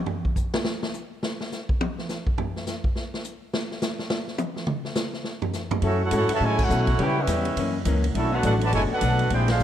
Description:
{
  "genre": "jazz, big band swing",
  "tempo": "208 BPM",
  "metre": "4/4",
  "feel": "swing 62% on 8ths",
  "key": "F# minor",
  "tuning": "A4 = 441 Hz",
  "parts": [
    { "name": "swinging big-band drum kit", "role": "drums", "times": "0.1-9.6 s", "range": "crash cymbal, hi-hat, kick drum, ride cymbal, snare drum, toms", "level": "-27 LUFS", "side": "equal", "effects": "none" },
    { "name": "clear trumpet section", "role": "melody", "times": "5.8-9.6 s", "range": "C#4 to A5", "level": "-25 LUFS", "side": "right 2 dB", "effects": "none" },
    { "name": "muted trombone section", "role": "second line", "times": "5.8-9.6 s", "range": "C#3 to G4", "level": "-30 LUFS", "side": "right 2 dB", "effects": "none" },
    { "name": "archtop guitar, miked and amplified", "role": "accompaniment", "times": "5.8-9.6 s", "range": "F#2 to A4", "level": "-28 LUFS", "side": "left 4 dB", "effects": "none" },
    { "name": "upright bass", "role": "bass", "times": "5.8-9.6 s", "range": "F#1 to C#3", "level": "-24 LUFS", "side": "equal", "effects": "none" },
    { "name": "mellow saxophone section", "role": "sustained chords", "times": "7.0-8.7 s", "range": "D3 to G4", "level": "-35 LUFS", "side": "left 2 dB", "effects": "none" }
  ],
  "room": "light reverb",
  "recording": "dark, warm production",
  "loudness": "-23 LUFS",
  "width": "side -10 dB against mid",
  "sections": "0.0-5.8 A section; 5.8-9.6 B section",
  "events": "drum solo 0.0-5.8; band accent 6.6, 9.4",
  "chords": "0.0 N.C.; 5.8 F#m7; 7.0 C#m7b5; 7.6 F#7; 8.1 Bm7",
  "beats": "| 0.08 0.37 0.65 0.94 | 1.23 1.52 1.80 2.09 | 2.38 2.67 2.95 3.24 | 3.53 3.82 4.11 4.39 | 4.68 4.97 5.26 5.55 | 5.84 6.12 6.41 6.70 | 6.99 7.28 7.57 7.86 | 8.15 8.44 8.73 9.02 | 9.30 9.59"
}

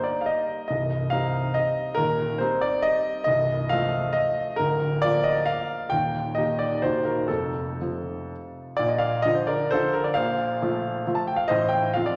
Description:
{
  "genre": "classical, romantic triple-time dance for piano with dotted rhythms",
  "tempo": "111-150 BPM",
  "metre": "3/4",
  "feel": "rubato",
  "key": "Bb major from 3.3 s",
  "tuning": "A4 = 440 Hz",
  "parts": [
    { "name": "clear grand piano", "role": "solo", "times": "0.0-12.2 s", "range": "C1 to A5", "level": "-25 LUFS", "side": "equal", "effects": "none" }
  ],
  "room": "wet scoring stage reverb, RT60 1.9 s",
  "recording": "none",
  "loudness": "-25 LUFS",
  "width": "mono",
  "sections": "0.0-8.8 A section; 8.8-12.2 B section",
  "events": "none",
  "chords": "0.0 Eb/G; 0.7 Cm; 2.0 Cm/Eb; 3.3 F7/C; 4.6 Bb/D; 5.9 Eb; 6.8 Ebm; 7.3 F; 8.8 Bb; 10.1 F/Bb; 11.5 F7/A",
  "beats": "0.28 | 0.70 1.12 1.56 | 1.97 2.40 2.83 | 3.26 3.70 4.14 | 4.57 5.01 5.47 | 5.90 6.35 6.82 | 7.29 7.80 8.31 | 8.78 9.25 9.72 | 10.15 10.60 11.05 | 11.49 11.95"
}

